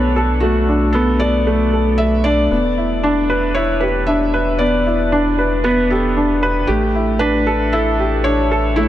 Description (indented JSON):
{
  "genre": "piano and strings electronica",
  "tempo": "115 BPM",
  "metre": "4/4",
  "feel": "straight",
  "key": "unclear",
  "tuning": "A4 = 439 Hz",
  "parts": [
    { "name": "felt-muted upright piano", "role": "melody", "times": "0.0-8.9 s", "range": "E4 to E5", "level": "-20 LUFS", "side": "equal", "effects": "none" },
    { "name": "warm upright piano", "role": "riff", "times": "0.0-8.9 s", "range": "A3 to B4", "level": "-16 LUFS", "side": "equal", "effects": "none" },
    { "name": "round analog bass", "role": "bass", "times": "0.0-8.9 s", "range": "E1 to B1", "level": "-20 LUFS", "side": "equal", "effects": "none" }
  ],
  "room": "moderate huge ambient reverb, RT60 6.9 s",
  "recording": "none",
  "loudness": "-14 LUFS",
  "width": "side -12 dB against mid",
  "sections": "0.0-8.9 A section",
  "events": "none",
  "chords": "0.0 Bm7; 2.5 Em7; 6.7 A7sus4",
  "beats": "| 0.43 0.95 1.47 1.99 | 2.51 3.03 3.56 4.08 | 4.60 5.12 5.64 6.17 | 6.69 7.21 7.73 8.25 | 8.77"
}